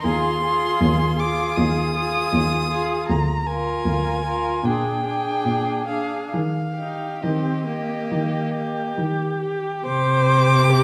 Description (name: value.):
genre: classical, slow romantic movement for string quartet.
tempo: 66-80 BPM.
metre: 4/4.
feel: rubato.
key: Eb major.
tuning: A4 = 442 Hz.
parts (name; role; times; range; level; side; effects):
warm violin; melody; 0.0-10.8 s; Eb5 to Eb6; -28 LUFS; equal; none.
rich violin; second line; 0.0-10.8 s; G4 to Bb4; -31 LUFS; equal; none.
rich viola; accompaniment; 0.0-10.8 s; Bb3 to C5; -28 LUFS; equal; none.
dark cello; bass; 0.0-10.8 s; D2 to Eb3; -25 LUFS; equal; none.
room: wet scoring stage reverb, RT60 1.4 s.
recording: dark, warm production.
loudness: -22 LUFS.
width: mono.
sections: 0.0-9.9 A section.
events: none.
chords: 0.0 Fm7/Eb; 3.1 Bb7/D; 4.7 Bb7; 6.3 Eb; 9.9 C5.